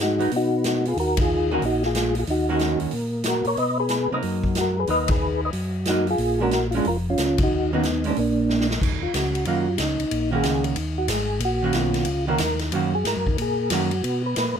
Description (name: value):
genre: soul jazz organ trio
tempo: 184 BPM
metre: 4/4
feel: swing 64% on 8ths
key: unclear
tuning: A4 = 441 Hz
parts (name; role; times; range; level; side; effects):
- percussive tonewheel organ; melody; 0.0-14.6 s; Bb3 to D#5; -24 LUFS; equal; slow rotary speaker, chorus vibrato
- tonewheel organ; bass; 0.0-14.6 s; F1 to C3; -26 LUFS; equal; chorus vibrato, slow rotary speaker
- swinging big-band drum kit; drums; 0.0-14.5 s; crash cymbal, hi-hat, kick drum, ride cymbal, snare drum; -28 LUFS; left 1 dB; none
- archtop guitar, miked and amplified; accompaniment; 0.2-13.9 s; Eb3 to Gb4; -26 LUFS; right 5 dB; none
room: little or no reverb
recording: close, detailed microphones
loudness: -20 LUFS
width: side -8 dB against mid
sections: 0.0-8.8 A section; 8.8-14.6 B section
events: band accent 1.1, 5.1, 7.3; drum fill 8.5-8.8; tonewheel organ solo 8.8-14.6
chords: 0.0 Abm7; 1.0 Ebm7; 3.6 Bmaj7; 6.2 Bb7#9; 7.5 Ebm7; 8.2 Bb; 8.8 Abm7